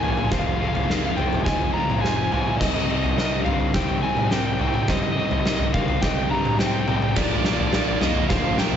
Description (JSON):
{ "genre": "post-rock", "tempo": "105 BPM", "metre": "4/4", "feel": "straight", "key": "C minor", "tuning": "A4 = 440 Hz", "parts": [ { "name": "crunchy overdriven guitar", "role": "melody", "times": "0.0-8.8 s", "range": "D5 to Bb5", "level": "-26 LUFS", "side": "right 1 dB", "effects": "analog delay" }, { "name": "warbly tape-like pad", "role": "sustained chords", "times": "0.1-8.8 s", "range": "none", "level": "barely audible", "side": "none", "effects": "none" }, { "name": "electric guitar through a small old amp", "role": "arpeggios", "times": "0.0-8.8 s", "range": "F2 to G4", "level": "-34 LUFS", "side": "left 1 dB", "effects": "none" }, { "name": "felt-muted upright piano", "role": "arpeggios", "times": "0.0-8.8 s", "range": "Bb4 to Eb5", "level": "-38 LUFS", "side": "right 6 dB", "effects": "none" }, { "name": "distorted electric guitar", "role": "riff", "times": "0.0-8.8 s", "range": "F2 to F4", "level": "-28 LUFS", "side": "left 7 dB", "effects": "distortion" }, { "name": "fuzz picked electric bass", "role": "bass", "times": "0.0-8.8 s", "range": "F1 to G2", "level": "-29 LUFS", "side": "equal", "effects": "overdrive" }, { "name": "oversized low-tuned drum kit", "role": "drums", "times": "0.0-8.8 s", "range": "crash cymbal, kick drum, snare drum, toms", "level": "-23 LUFS", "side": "equal", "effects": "none" }, { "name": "tight distorted guitar", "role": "riff", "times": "7.2-8.8 s", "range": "Bb2 to Bb3", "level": "-28 LUFS", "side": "right 13 dB", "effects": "distortion" } ], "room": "light reverb, studio ambience", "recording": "nothing above 7.8 kHz", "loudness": "-20 LUFS", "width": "side -8 dB against mid", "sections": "0.0-8.8 A section", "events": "build-up 0.0-8.8; drum fill 0.0-8.8", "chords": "0.3 Fm7; 2.6 Cm; 7.2 Bb7" }